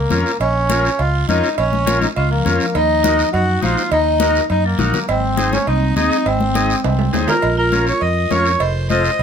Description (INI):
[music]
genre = latin, cumbia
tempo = 205 BPM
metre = 4/4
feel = straight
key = unclear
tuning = A4 = 440 Hz
[part]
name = accordion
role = melody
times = 0.0-9.2 s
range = Bb3 to Eb5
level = -18 LUFS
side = equal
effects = none
[part]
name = fingered electric bass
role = bass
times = 0.0-9.2 s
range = F1 to Gb2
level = -20 LUFS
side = equal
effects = none
[part]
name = combo organ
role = accompaniment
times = 0.1-9.1 s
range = C4 to Eb5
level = -22 LUFS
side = left 3 dB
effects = none
[part]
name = congas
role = percussion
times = 0.1-9.0 s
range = none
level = -24 LUFS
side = left 7 dB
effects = none
[part]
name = guiro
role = percussion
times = 0.1-9.2 s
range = none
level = -31 LUFS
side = right 5 dB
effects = none
[part]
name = cowbell and timbales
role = percussion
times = 0.4-9.2 s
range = none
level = -24 LUFS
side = right 7 dB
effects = none
[part]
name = marimba with hard mallets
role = second line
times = 2.2-9.2 s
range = F3 to C5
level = -24 LUFS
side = right 2 dB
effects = none
[sound]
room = moderate studio reverb, RT60 0.8 s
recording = minimal, uncompressed stereo recording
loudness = -14 LUFS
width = side -7 dB against mid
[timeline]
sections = 0.0-7.4 A section; 7.4-9.2 B section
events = drum fill 6.8-7.4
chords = 0.0 Bbm; 2.7 Ebm; 5.1 Ab; 7.4 Bbm; 8.6 F7